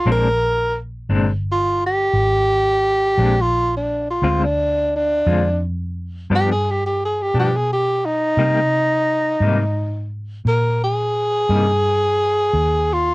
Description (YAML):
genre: slow blues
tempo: 58 BPM (dotted quarters)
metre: 12/8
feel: straight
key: Bb mixolydian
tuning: A4 = 442 Hz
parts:
  - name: breathy tenor saxophone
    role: melody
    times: 0.0-13.1 s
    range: D4 to Bb4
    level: -18 LUFS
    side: equal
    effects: none
  - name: vintage muted fingered electric bass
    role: bass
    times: 0.0-13.1 s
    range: G1 to C3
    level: -22 LUFS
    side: equal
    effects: none
  - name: clean electric guitar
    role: accompaniment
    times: 0.1-11.7 s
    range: G2 to F4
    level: -21 LUFS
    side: left 4 dB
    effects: tremolo, cassette tape
room: light reverb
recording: home recording on cassette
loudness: -16 LUFS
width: side -22 dB against mid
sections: 0.0-13.1 A section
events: none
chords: 0.1 Bb9; 4.2 Dm7b5; 6.3 G7; 8.4 Cm7